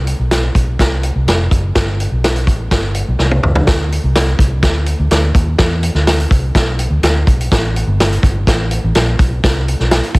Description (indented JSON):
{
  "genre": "uptempo 1960s-style soul",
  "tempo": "125 BPM",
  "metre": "4/4",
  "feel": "straight",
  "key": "unclear",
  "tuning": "A4 = 440 Hz",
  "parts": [
    { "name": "vintage muted fingered electric bass", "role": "bass", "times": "0.0-10.2 s", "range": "F1 to E2", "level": "-15 LUFS", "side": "equal", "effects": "none" },
    { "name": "vintage drum kit", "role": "drums", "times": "0.1-10.2 s", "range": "hi-hat, kick drum, snare drum, toms", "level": "-14 LUFS", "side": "equal", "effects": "none" }
  ],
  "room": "little or no reverb",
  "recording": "heavily compressed radio sound",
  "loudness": "-12 LUFS",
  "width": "side -27 dB against mid",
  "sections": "0.0-3.7 A section; 3.7-10.2 B section",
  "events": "drum fill 3.2-3.7",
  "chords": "none",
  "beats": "0.32 0.80 1.28 | 1.76 2.24 2.72 3.20 | 3.68 4.16 4.64 5.12 | 5.59 6.07 6.55 7.03 | 7.51 7.99 8.47 8.95 | 9.43 9.90"
}